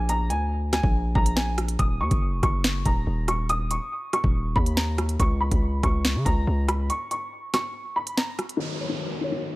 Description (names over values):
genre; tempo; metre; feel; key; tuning
hip hop, drill; 141 BPM; 4/4; half-time; Eb minor; A4 = 438 Hz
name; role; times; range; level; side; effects
warm upright piano; melody; 0.0-9.6 s; Db5 to Eb6; -29 LUFS; equal; low-pass filter, digital delay
distorted 808-style bass; bass; 0.0-6.9 s; Eb1 to Db3; -25 LUFS; equal; distortion
drill drum kit; drums; 0.1-8.6 s; hi-hat, kick drum, rim click, snare drum; -24 LUFS; equal; none
felt-muted upright piano; accompaniment; 8.6-9.6 s; Eb3 to Db5; -29 LUFS; left 4 dB; low-pass filter
downlifter; sound effects; 8.6-9.6 s; none; -32 LUFS; equal; none
room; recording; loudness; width
little or no reverb; none; -22 LUFS; side -19 dB against mid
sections
0.0-8.6 A section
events
break 6.9-8.6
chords
0.0 Bb7; 1.8 Ebm7; 5.2 N.C.; 8.6 Ebm7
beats
| 0.09 0.52 0.94 1.37 | 1.79 2.22 2.64 3.07 | 3.49 3.92 4.34 4.77 | 5.20 5.62 6.05 6.47 | 6.90 7.32 7.75 8.17 | 8.60 9.03 9.45